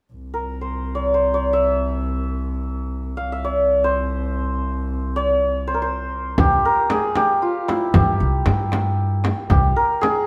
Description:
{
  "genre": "Persian modal ensemble",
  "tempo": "free time",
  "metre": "none",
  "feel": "none",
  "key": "C dastgah homayun",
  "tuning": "A4 = 440 Hz",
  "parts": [
    { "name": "muted double bass", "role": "drone", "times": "0.1-6.4 s", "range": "C2", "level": "-28 LUFS", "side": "equal", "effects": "none" },
    { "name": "santur", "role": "melody", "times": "0.3-10.3 s", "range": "E4 to F5", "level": "-23 LUFS", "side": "equal", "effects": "none" },
    { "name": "upright bass", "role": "bass", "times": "6.4-9.7 s", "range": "C2 to G2", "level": "-22 LUFS", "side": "equal", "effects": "none" },
    { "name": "frame drum", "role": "percussion", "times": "6.4-10.2 s", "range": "none", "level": "-26 LUFS", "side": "equal", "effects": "none" },
    { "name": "tombak", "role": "percussion", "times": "6.4-10.2 s", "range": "none", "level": "-26 LUFS", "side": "equal", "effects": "none" }
  ],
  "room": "wet stone room reverb, RT60 1.4 s",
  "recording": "band playing live in one room",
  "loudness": "-20 LUFS",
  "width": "mono",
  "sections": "0.1-6.4 A section; 6.4-10.3 B section",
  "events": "none",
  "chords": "none"
}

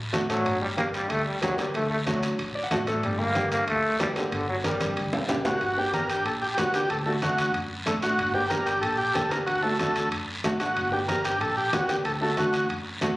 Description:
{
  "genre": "latin, cumbia",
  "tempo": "186 BPM",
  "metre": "4/4",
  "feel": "straight",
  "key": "G harmonic minor",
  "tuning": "A4 = 439 Hz",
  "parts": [
    { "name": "clear upright piano", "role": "accompaniment", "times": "0.1-13.1 s", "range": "A3 to A5", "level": "-29 LUFS", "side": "equal", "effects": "none" },
    { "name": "upright bass", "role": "bass", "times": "0.1-13.2 s", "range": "G1 to F#2", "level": "-35 LUFS", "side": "equal", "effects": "none" },
    { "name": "congas", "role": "percussion", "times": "0.1-13.2 s", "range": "none", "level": "-36 LUFS", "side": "equal", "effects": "none" },
    { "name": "guiro", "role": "percussion", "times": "0.1-13.2 s", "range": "none", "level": "-37 LUFS", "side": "left 1 dB", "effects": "none" },
    { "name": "timbales", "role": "percussion", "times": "0.1-13.2 s", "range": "none", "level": "-34 LUFS", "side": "right 1 dB", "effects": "none" },
    { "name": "growling trombone", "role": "second line", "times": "0.3-5.1 s", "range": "D3 to Bb3", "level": "-27 LUFS", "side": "equal", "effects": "none" },
    { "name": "combo organ", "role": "melody", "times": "5.5-12.7 s", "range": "F#4 to Bb4", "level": "-26 LUFS", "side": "equal", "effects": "none" }
  ],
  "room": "moderate large studio reverb, RT60 0.8 s",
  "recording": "recorded on a phone in the room, club reverb",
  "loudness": "-24 LUFS",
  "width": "side -19 dB against mid",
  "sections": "0.0-5.6 A section; 5.6-13.2 B section",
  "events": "trombone solo 0.0-5.6; upright piano fill 2.4-3.0; drum fill 4.8-5.6",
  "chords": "0.5 Gm; 1.7 D; 3.0 Gm; 6.9 D; 8.2 Gm; 9.5 D; 10.8 Gm; 12.1 D"
}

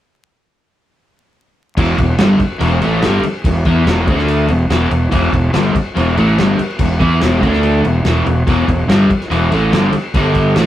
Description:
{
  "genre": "garage rock duo or trio",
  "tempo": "143 BPM",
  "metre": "4/4",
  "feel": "straight",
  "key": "unclear",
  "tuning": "A4 = 440 Hz",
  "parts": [
    { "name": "crunchy overdriven guitar", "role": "riff", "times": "1.8-10.7 s", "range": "E2 to E4", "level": "-15 LUFS", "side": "equal", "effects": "none" },
    { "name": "fuzz fingered electric bass", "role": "bass", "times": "1.8-10.7 s", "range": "E1 to E2", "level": "-16 LUFS", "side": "equal", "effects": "overdrive, tube saturation" },
    { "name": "cloth-damped thuddy drum kit", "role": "drums", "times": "1.8-10.7 s", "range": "crash cymbal, kick drum, snare drum", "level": "-19 LUFS", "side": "equal", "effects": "none" }
  ],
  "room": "moderate small room reverb, RT60 0.6 s",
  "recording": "rough rehearsal-room recording, vinyl crackle",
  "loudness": "-12 LUFS",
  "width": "side -12 dB against mid",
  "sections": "1.8-10.7 A section",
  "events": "none",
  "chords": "1.8 E5; 4.1 D5; 4.5 E5; 7.4 D5; 7.8 E5; 10.1 G5"
}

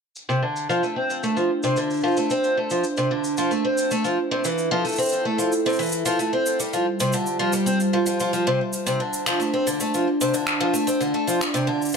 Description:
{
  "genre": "folktronica",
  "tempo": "112 BPM",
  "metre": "4/4",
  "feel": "straight",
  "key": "D minor",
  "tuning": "A4 = 440 Hz",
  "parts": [
    { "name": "warbly tape-like pad", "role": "sustained chords", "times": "0.7-12.0 s", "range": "G3 to D5", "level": "-25 LUFS", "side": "right 1 dB", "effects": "chorus, built-in reverb" },
    { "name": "electronic shaker and finger snaps", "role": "drums", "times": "0.2-11.9 s", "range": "none", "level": "-30 LUFS", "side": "equal", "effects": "overdrive, low-pass filter on perc, low-pass filter on snare, low-pass filter on room" },
    { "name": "picked twelve-string acoustic guitar", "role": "arpeggios", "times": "0.3-12.0 s", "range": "C3 to C4", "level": "-22 LUFS", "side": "equal", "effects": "low-pass filter, ping-pong delay" }
  ],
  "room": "wet studio reverb, RT60 0.6 s",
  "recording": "none",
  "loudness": "-20 LUFS",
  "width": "side -5 dB against mid",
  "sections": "0.2-12.0 A section",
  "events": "none",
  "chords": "0.2 Dm7; 4.4 Fmaj7; 6.6 G7sus4; 8.7 Dm7"
}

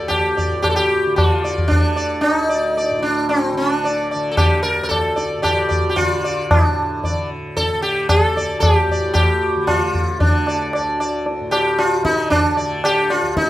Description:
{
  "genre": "indian classical, Hindustani",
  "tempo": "113 BPM",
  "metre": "4/4",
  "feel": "straight",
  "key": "D raga bhairavi",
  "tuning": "A4 = 441 Hz",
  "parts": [
    { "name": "sitar", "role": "melody", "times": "0.0-13.5 s", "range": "C4 to D5", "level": "-18 LUFS", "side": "equal", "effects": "plate reverb" },
    { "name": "tanpura", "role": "drone", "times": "0.0-13.5 s", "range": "D2 to D3", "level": "-26 LUFS", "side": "left 1 dB", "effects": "plate reverb" },
    { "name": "tabla", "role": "percussion", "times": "0.1-13.5 s", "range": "none", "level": "-19 LUFS", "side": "equal", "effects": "none" }
  ],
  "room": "wet studio reverb, RT60 0.6 s",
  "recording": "rough home demo mix",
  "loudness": "-15 LUFS",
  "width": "side -14 dB against mid",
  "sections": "0.0-6.5 A section; 6.5-13.5 B section",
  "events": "none",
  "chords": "none"
}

